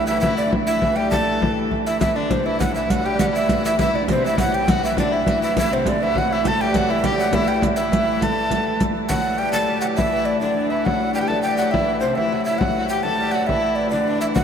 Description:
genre	medieval dance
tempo	136 BPM (dotted quarters)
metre	6/8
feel	straight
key	A dorian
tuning	A4 = 440 Hz
part	breathy mellow tenor recorder	melody	0.0-14.4 s	C5 to A5	-21 LUFS	right 1 dB	none
part	clear fiddle	second line	0.0-14.4 s	C4 to A4	-28 LUFS	left 3 dB	none
part	lute	second line	0.0-14.4 s	C3 to A3	-27 LUFS	right 1 dB	none
part	clear hurdy-gurdy	drone	0.0-14.4 s	A2 to E3	-26 LUFS	left 1 dB	none
part	frame drum	percussion	0.2-14.4 s	none	-25 LUFS	left 2 dB	none
part	riq	percussion	2.0-8.9 s	none	-28 LUFS	right 5 dB	none
room	wet cathedral reverb, RT60 6.3 s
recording	in a vast, echoing space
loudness	-18 LUFS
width	side -7 dB against mid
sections	0.0-2.0 A section; 2.0-9.1 A section; 9.1-14.4 B section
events	none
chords	none

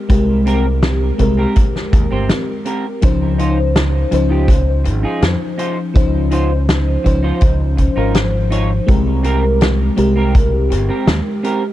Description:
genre	vaporwave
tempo	82 BPM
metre	4/4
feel	straight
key	Db lydian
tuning	A4 = 440 Hz
part	FM electric piano with soft pad layer	accompaniment	0.0-11.7 s	F3 to C5	-18 LUFS	left 1 dB	analog chorus, cassette tape, tape echo
part	modern bright fingered electric bass	bass	0.1-11.2 s	G1 to F2	-16 LUFS	equal	none
part	kick drum	drums	0.1-10.5 s	none	-14 LUFS	equal	none
part	loose indie drum kit	drums	0.1-11.6 s	hi-hat, snare drum	-20 LUFS	left 1 dB	none
part	clean electric guitar	riff	0.5-11.6 s	C4 to Db5	-24 LUFS	right 3 dB	lush chorus, tape echo
room	small room ambience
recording	dark, warm production, cassette tape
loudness	-13 LUFS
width	side -14 dB against mid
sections	0.0-3.0 A section; 3.0-11.7 A section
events	break 2.3-3.0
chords	0.0 Abmaj9; 3.0 Dbmaj9; 8.9 Abmaj9

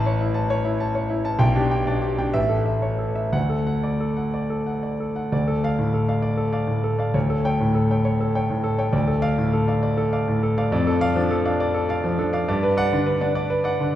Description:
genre	classical, virtuoso piano study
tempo	58-69 BPM (dotted quarters)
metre	6/8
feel	rubato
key	D major, D minor from 5.3 s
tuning	A4 = 440 Hz
part	clear concert grand piano	solo	0.0-14.0 s	A1 to A5	-20 LUFS	equal	none
room	wet recital hall reverb, RT60 1.5 s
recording	heard from further back in the room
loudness	-20 LUFS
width	side -12 dB against mid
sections	0.0-5.3 A section; 5.3-14.0 B section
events	none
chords	0.0 A; 1.4 G/B; 2.3 A; 3.3 D; 5.3 Dm; 7.1 A7/D; 8.9 Dm; 10.7 Dm/F; 12.5 Gmaj7

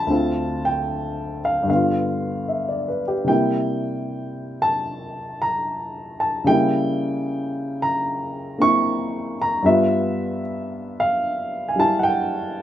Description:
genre	solo jazz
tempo	75 BPM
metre	4/4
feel	swing 69% on 8ths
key	unclear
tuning	A4 = 439 Hz
part	warm upright piano	solo	0.0-12.6 s	D2 to C#6	-20 LUFS	equal	none
room	moderate small room reverb, RT60 0.5 s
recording	rough home demo mix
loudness	-20 LUFS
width	side -11 dB against mid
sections	0.0-12.6 A section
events	none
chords	0.1 Dm7; 1.7 G7; 3.3 C7; 6.5 C#dim7; 9.6 G7

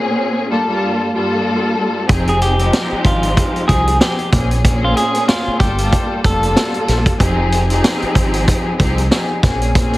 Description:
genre	hip hop, boom-bap hip-hop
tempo	94 BPM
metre	4/4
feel	swing 57% on 16ths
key	F minor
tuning	A4 = 440 Hz
part	warm studio string section	accompaniment	0.0-10.0 s	G2 to A4	-18 LUFS	left 1 dB	high-pass filter, low-pass filter, plate reverb
part	deep dub fingered electric bass	bass	2.1-10.0 s	F1 to C2	-17 LUFS	equal	none
part	vintage drum kit	drums	2.1-10.0 s	hi-hat, kick drum, snare drum	-16 LUFS	equal	none
part	clean electric guitar	melody	2.3-7.2 s	F4 to A4	-20 LUFS	equal	spring reverb, high-pass filter, low-pass filter, plate reverb
room	moderate small room reverb, RT60 0.6 s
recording	heavily compressed radio sound, multiband compression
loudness	-13 LUFS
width	side -17 dB against mid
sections	0.0-2.1 A section; 2.1-10.0 B section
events	none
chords	0.5 Gm9; 2.1 Fm9; 4.3 Bbm9; 5.6 Gm9; 7.2 Fm9; 9.4 Bbm9

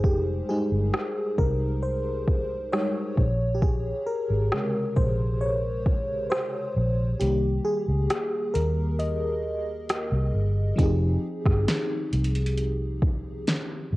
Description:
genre	contemporary R&B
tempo	67 BPM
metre	4/4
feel	straight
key	F minor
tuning	A4 = 440 Hz
part	FM electric piano with soft pad layer	accompaniment	0.0-14.0 s	C3 to Eb5	-28 LUFS	equal	chorus, tremolo
part	vintage muted fingered electric bass	bass	0.0-14.0 s	F1 to Eb2	-26 LUFS	equal	none
part	smooth R&B drum kit	drums	0.0-13.7 s	hi-hat, kick drum, rim click, snare drum	-26 LUFS	equal	none
room	digital ambience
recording	home recording on cassette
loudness	-23 LUFS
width	side -19 dB against mid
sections	0.0-10.8 A section; 10.8-14.0 B section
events	FM electric piano solo 0.0-10.8; kick muted 7.2-10.8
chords	0.0 Fm9 (rootless); 3.2 Bbm7; 7.2 Cm7; 10.8 Fm9

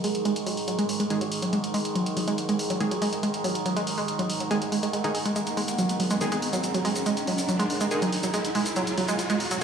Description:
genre	driving peak-time techno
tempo	141 BPM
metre	4/4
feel	straight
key	unclear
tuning	A4 = 441 Hz
part	analog pluck	riff	0.0-9.6 s	F#3 to G#4	-27 LUFS	right 1 dB	chorus, tube saturation, tape echo
part	overtone-sweeping drone	drone	0.0-9.6 s	G#2 to D#3	-33 LUFS	right 2 dB	chorus, built-in reverb, phaser
part	electronic hi-hat and shaker	drums	0.0-9.6 s	none	-32 LUFS	equal	none
part	riser	sound effects	2.2-9.6 s	none	-35 LUFS	left 1 dB	none
part	deep dark ambient pad	texture	0.0-9.6 s	G#4 to A#5	-33 LUFS	right 2 dB	chorus, built-in reverb
part	supersaw stab	stabs	1.1-9.6 s	D#3 to G#4	-32 LUFS	equal	vintage 12-bit sampler grit, low-pass filter, tape echo
room	moderate lush hall reverb, RT60 1.8 s, digital ambience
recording	dry, gritty hardware recording, transformer saturation, studio reverb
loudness	-24 LUFS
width	side -7 dB against mid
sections	0.0-9.6 A section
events	build-up 0.0-9.6; filter sweep on synth arpeggio sound 0.0-9.6; filter sweep on supersaw synth 0.0-9.6; riser 2.2-9.6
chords	0.0 G#5

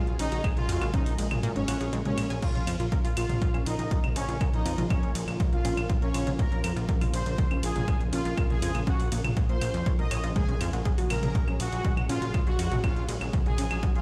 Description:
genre	melodic techno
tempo	121 BPM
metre	4/4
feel	straight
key	Bb minor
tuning	A4 = 438 Hz
part	analog synth brass	melody	0.0-14.0 s	Db4 to Eb5	-38 LUFS	equal	chorus, sidechain pumping, tape echo
part	soft supersaw	second line	0.0-14.0 s	Db5 to Eb6	-43 LUFS	equal	sidechain pumping, delay
part	lush unison pad	sustained chords	0.0-14.0 s	Db3 to Ab4	-42 LUFS	equal	chorus, phaser, vintage 12-bit sampler grit, sidechain pumping
part	tight sequenced synth	arpeggios	0.0-14.0 s	Ab3 to Ab5	-40 LUFS	equal	chorus, sidechain pumping, delay
part	plucky analog bass	bass	0.0-14.0 s	Ab1 to Bb2	-34 LUFS	equal	sidechain pumping
part	punchy analog drum machine	drums	0.1-14.0 s	claves, crash cymbal, hi-hat, ride cymbal, toms	-38 LUFS	equal	sidechain pumping on hats, sidechain pumping on toms, sidechain pumping on cymbals, sidechain pumping on perc
part	electronic kick drum	drums	0.4-13.9 s	none	-30 LUFS	equal	none
part	swell	sound effects	2.0-2.4 s	none	-44 LUFS	equal	none
room	little or no reverb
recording	played on a big sound system in a bare room, stone room reverb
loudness	-27 LUFS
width	mono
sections	0.0-14.0 A section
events	kick drops out 1.4-2.4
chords	0.0 Gbsus2/Bb; 2.4 Bbm; 10.4 Gbsus2/Bb

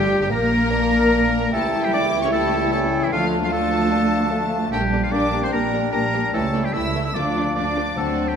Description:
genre	classical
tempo	148 BPM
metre	4/4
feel	rubato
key	D minor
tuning	A4 = 440 Hz
part	warm symphonic violin section	melody	0.0-8.4 s	E5 to E6	-31 LUFS	left 2 dB	none
part	bright clarinet	second line	0.0-8.4 s	D4 to Bb4	-30 LUFS	left 3 dB	none
part	bright oboe	second line	0.0-8.4 s	E4 to E5	-25 LUFS	equal	none
part	mellow hollow silver concert flute	second line	0.0-8.4 s	G4 to G5	-30 LUFS	left 2 dB	none
part	warm symphonic violin section	second line	0.0-8.3 s	D4 to Bb4	-31 LUFS	left 2 dB	none
part	mellow bassoon	accompaniment	0.0-8.4 s	A3 to F4	-28 LUFS	right 2 dB	none
part	rich symphonic viola section	accompaniment	0.0-8.3 s	D3 to C4	-30 LUFS	right 1 dB	none
part	warm French horn section	sustained chords	0.0-8.4 s	F3 to E4	-26 LUFS	left 5 dB	none
part	rich symphonic double bass section	bass	0.0-8.4 s	G1 to D2	-27 LUFS	right 3 dB	none
part	warm symphonic cello section	bass	0.0-8.4 s	E3 to E4	-26 LUFS	right 2 dB	none
part	timpani	percussion	0.0-0.5, 3.1-3.7, 7.1-8.4 s	D3	-35 LUFS	left 1 dB	none
room	wet scoring stage reverb, RT60 1.8 s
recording	none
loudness	-18 LUFS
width	side -7 dB against mid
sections	0.0-8.4 A section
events	none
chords	0.0 Gm; 1.5 A7/C#; 3.1 Dm; 4.7 Gm/Bb; 6.3 A7/C#; 7.1 Dm

